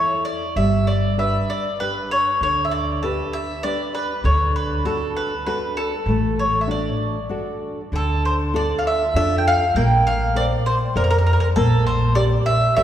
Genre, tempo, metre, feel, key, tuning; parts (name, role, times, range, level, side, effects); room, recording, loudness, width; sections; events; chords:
italian folk, Italian serenade; 98 BPM; 3/4; rubato; D major, D minor from 7.9 s; A4 = 440 Hz
mandolin; melody; 0.0-12.8 s; A4 to G5; -21 LUFS; equal
nylon-string guitar; accompaniment; 0.0-12.8 s; D3 to E5; -25 LUFS; equal
upright bass; bass; 0.6-12.8 s; G1 to F2; -22 LUFS; equal
wet church reverb, RT60 2.6 s; recorded in a church or concert hall; -18 LUFS; side -10 dB against mid
0.0-7.9 A section; 7.9-12.8 B section
0.0 A; 0.6 G; 4.2 D; 7.9 Dm; 9.7 Bbadd9; 11.6 Gm/Bb